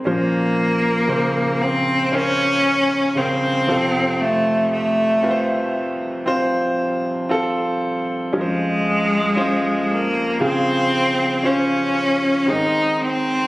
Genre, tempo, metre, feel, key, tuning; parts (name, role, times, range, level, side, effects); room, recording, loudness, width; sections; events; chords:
pop; 58 BPM; 4/4; straight; Bb minor; A4 = 440 Hz
clear baby grand piano; accompaniment; 0.0-13.5 s; F2 to C5; -21 LUFS; equal
bright cello; melody; 0.1-13.5 s; Ab3 to Eb4; -18 LUFS; equal
light reverb; recorded on a phone in the room, studio reverb; -17 LUFS; side -19 dB against mid
0.1-13.5 A section
0.1 Bbmadd9; 3.7 F; 8.3 Dbmaj7/F; 12.5 Abadd9